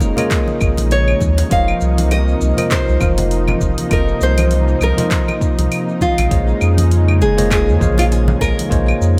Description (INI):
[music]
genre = sunset chillout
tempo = 100 BPM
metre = 4/4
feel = swing 57% on 16ths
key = Bb minor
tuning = A4 = 440 Hz
[part]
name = nylon-string guitar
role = melody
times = 0.0-9.2 s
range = F4 to F5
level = -24 LUFS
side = equal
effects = digital delay, shimmer reverb
[part]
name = tine electric piano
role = accompaniment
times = 0.0-9.2 s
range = F3 to F5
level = -24 LUFS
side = equal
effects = digital delay, shimmer reverb
[part]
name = lush unison pad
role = sustained chords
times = 0.0-9.2 s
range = C3 to Eb4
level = -26 LUFS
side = equal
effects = chorus, shimmer reverb
[part]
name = warm sub bass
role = bass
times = 0.0-9.2 s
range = F1 to F2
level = -18 LUFS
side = equal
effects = none
[part]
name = deep house drum kit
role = drums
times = 0.0-9.1 s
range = claves, handclaps, hi-hat, shaker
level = -27 LUFS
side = equal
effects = none
[part]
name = congas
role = percussion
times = 0.0-8.7 s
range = none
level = -27 LUFS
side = equal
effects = none
[part]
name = electronic kick drum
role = drums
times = 0.3-8.8 s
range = none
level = -21 LUFS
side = equal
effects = none
[sound]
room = light reverb, digital ambience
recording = none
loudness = -15 LUFS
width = mono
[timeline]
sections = 0.0-9.2 A section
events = none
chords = 0.0 Bbm11; 1.5 F7sus4; 6.0 Bbm11